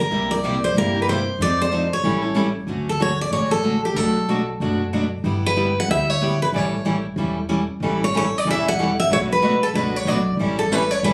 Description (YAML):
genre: acoustic string swing (jazz manouche)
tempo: 187 BPM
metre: 4/4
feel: swing 59% on 8ths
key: D major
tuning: A4 = 440 Hz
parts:
  - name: picked steel-string acoustic guitar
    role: melody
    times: 0.0-11.1 s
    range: G4 to F#5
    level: -23 LUFS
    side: equal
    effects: none
  - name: picked steel-string acoustic guitar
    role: accompaniment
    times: 0.1-11.1 s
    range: B2 to A4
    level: -26 LUFS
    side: equal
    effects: none
  - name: picked steel-string acoustic guitar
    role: accompaniment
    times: 0.1-2.5, 7.8-11.1 s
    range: B2 to B4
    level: -29 LUFS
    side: equal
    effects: none
  - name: upright bass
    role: bass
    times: 0.1-11.1 s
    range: E1 to F2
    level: -30 LUFS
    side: equal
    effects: none
room: moderate studio reverb, RT60 0.6 s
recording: recorded on a phone in the room, club reverb, compression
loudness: -21 LUFS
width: mono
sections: 0.0-2.7 A section; 2.7-11.1 B section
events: none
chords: 0.1 C7; 1.4 F7; 2.0 A7; 2.7 Dmaj7; 4.0 Bm7; 5.2 G6; 6.5 A7; 9.1 Bm7; 10.4 A7